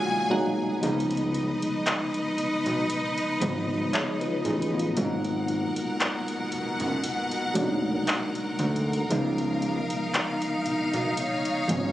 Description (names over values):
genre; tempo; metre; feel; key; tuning
contemporary R&B; 58 BPM; 4/4; swing 54% on 16ths; unclear; A4 = 439 Hz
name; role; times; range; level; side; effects
tine electric piano; accompaniment; 0.0-11.9 s; B2 to A#5; -28 LUFS; equal; overdrive, fast stereo tremolo
bright studio string section; sustained chords; 0.0-11.9 s; B2 to G#5; -30 LUFS; equal; none
glassy wavetable pluck; texture; 0.0-1.3 s; F#5 to B5; -40 LUFS; right 1 dB; chorus, digital delay
fat analog bass; bass; 0.8-11.9 s; E#1 to D2; -31 LUFS; equal; none
trap drum kit; drums; 0.8-11.9 s; handclaps, hi-hat; -30 LUFS; equal; none
room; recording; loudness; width
light reverb, digital ambience; recorded on a phone in the room, club reverb, compression; -24 LUFS; side -14 dB against mid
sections
0.8-11.9 A section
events
break 0.0-0.8; tine electric piano fill 0.0-0.8; kick muted 0.8-11.9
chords
0.0 G#m7; 0.8 C#9; 5.0 G#m9; 9.1 C#9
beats
| 0.83 1.86 2.90 3.93 | 4.97 6.00 7.04 8.07 | 9.11 10.14 11.17